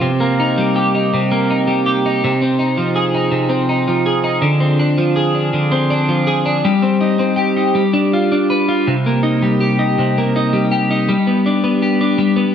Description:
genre	pop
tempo	54 BPM (dotted quarters)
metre	6/8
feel	straight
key	C minor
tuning	A4 = 440 Hz
part	twelve-string electric guitar	solo	0.0-12.5 s	C3 to B4	-13 LUFS	equal	lush chorus, digital delay
room	light reverb, digital ambience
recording	none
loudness	-13 LUFS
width	side -8 dB against mid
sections	0.0-12.5 A section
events	none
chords	0.0 Cm7; 2.2 Fm7/C; 4.4 Dm7b5; 6.6 Cm/G; 7.7 G7; 8.9 Cm7; 11.1 G

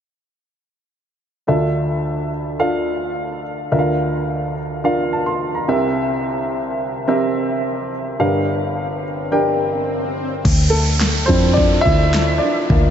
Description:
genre	piano-driven pop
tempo	107 BPM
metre	4/4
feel	straight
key	D minor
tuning	A4 = 445 Hz
part	warm upright piano	accompaniment	1.5-12.9 s	G1 to C6	-18 LUFS	equal	none
part	swell and downlifter	sound effects	8.9-12.9 s	none	-26 LUFS	right 2 dB	none
part	vintage muted picked electric bass	bass	10.4-12.9 s	D2 to F2	-17 LUFS	equal	none
part	deep house drum kit	drums	10.4-12.8 s	crash cymbal, handclaps, kick drum, snare drum	-19 LUFS	equal	overdrive
room	moderate huge ambient reverb, RT60 8.3 s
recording	dreamy mix soaked in reverb, nothing above 7.8 kHz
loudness	-16 LUFS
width	side -8 dB against mid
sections	1.5-10.5 A section; 10.5-12.9 B section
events	swell 8.9-10.5; upright piano solo 10.5-12.9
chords	1.5 Dmadd9; 3.7 Bb/D; 5.7 C7; 8.2 Gm7; 10.5 Dmadd9

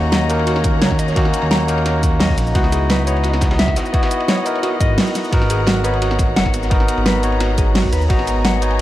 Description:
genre	liquid drum and bass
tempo	173 BPM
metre	4/4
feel	straight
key	G# minor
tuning	A4 = 439 Hz
part	barky tine electric piano	accompaniment	0.0-8.8 s	A#3 to A#5	-20 LUFS	equal	dub echo
part	rich studio string section	sustained chords	0.0-8.8 s	B3 to A#5	-27 LUFS	left 2 dB	sidechain pumping
part	smooth synth bass	bass	0.0-8.8 s	F#1 to D#2	-19 LUFS	equal	none
part	mellow electric guitar	arpeggios	0.1-8.6 s	F#4 to A#5	-26 LUFS	equal	dub echo
part	crunchy breakbeat drum kit	drums	0.1-8.8 s	hi-hat, ride cymbal, snare drum	-30 LUFS	equal	high-pass filter on cymbals, high-pass filter on hats, high-pass filter on snare, high-pass filter on room
part	pop drum kit	drums	0.1-8.7 s	cabasa, hi-hat, snare drum	-20 LUFS	equal	none
part	electronic kick drum	drums	0.6-8.2 s	none	-18 LUFS	equal	none
room	small room ambience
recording	dark, warm production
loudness	-14 LUFS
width	side -14 dB against mid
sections	0.0-8.8 A section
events	none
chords	0.0 D#m7; 2.5 C#m11; 5.3 G#m9

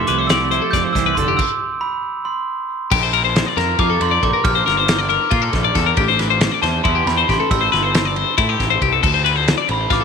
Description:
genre	math rock and midwest emo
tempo	275 BPM (eighths)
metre	7/8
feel	straight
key	unclear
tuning	A4 = 439 Hz
part	glockenspiel with soft plastic mallets	melody	0.0-10.0 s	A5 to G6	-22 LUFS	right 4 dB	none
part	twelve-string electric guitar	accompaniment	0.0-1.4 s	D3 to A4	-24 LUFS	right 14 dB	wide subtle chorus
part	twelve-string electric guitar	arpeggios	0.0-10.0 s	E4 to D5	-18 LUFS	left 13 dB	none
part	fuzz picked electric bass	bass	0.0-10.0 s	F1 to Bb2	-22 LUFS	equal	overdrive
part	loose indie drum kit	drums	0.1-10.0 s	crash cymbal, hi-hat, kick drum, ride cymbal, snare drum	-21 LUFS	equal	none
room	light reverb, studio ambience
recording	1960s-style stereo with parts hard left and right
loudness	-15 LUFS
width	side -6 dB against mid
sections	0.0-2.9 A section; 2.9-10.0 B section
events	stop 1.4-2.9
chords	0.0 Fmaj9; 1.4 N.C.; 2.9 Bb6; 6.0 Am7; 9.0 Dm7

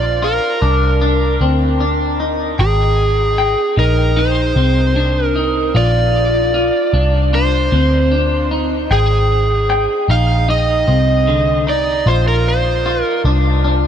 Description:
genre	dream pop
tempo	76 BPM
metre	4/4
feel	straight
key	unclear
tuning	A4 = 440 Hz
part	overdriven slide guitar	melody	0.0-13.2 s	Ab4 to F5	-18 LUFS	right 3 dB	shimmer reverb, tape echo
part	clean electric guitar	arpeggios	0.0-13.9 s	D3 to G5	-18 LUFS	left 2 dB	lush chorus, shimmer reverb, tape echo
part	vintage muted picked electric bass	bass	0.0-13.9 s	Ab1 to D2	-16 LUFS	equal	none
room	moderate huge ambient reverb, RT60 8.9 s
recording	dark, warm production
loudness	-12 LUFS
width	side -9 dB against mid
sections	0.0-13.9 A section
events	none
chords	0.0 Bbadd9; 2.6 Abmaj7; 5.8 Bbadd9; 8.9 Abmaj7; 12.1 Bbadd9

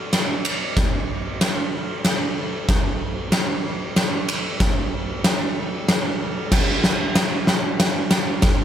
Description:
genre	rock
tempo	94 BPM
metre	3/4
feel	straight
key	none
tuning	none
part	oversized low-tuned drum kit	drums	0.1-8.6 s	crash cymbal, kick drum, ride cymbal, snare drum	-19 LUFS	equal	none
room	little or no reverb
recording	none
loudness	-19 LUFS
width	side -10 dB against mid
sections	0.0-8.6 A section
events	build-up 0.0-8.6; drum fill 0.0-8.6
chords	none

